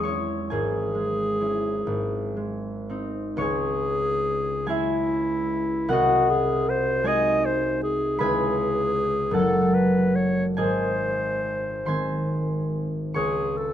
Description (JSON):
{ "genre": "classical, romantic duo for clarinet and harp", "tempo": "37-53 BPM (dotted quarters)", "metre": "6/8", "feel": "rubato", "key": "C# minor", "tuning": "A4 = 440 Hz", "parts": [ { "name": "bright clarinet", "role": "melody", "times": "0.0-13.7 s", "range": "E4 to D#5", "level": "-25 LUFS", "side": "equal", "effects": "none" }, { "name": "concert harp", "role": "accompaniment", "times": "0.0-13.7 s", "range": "F#1 to D#6", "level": "-24 LUFS", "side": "equal", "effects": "none" } ], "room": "light reverb", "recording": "close, detailed microphones", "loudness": "-22 LUFS", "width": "side -10 dB against mid", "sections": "0.0-3.4 A section; 3.4-13.7 B section", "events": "none", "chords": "0.0 C#m/E; 0.5 C#m/G#; 1.9 G#; 3.4 C#m; 5.9 G#7/B#; 8.2 C#m; 9.3 F#m; 10.6 G#; 13.1 C#5" }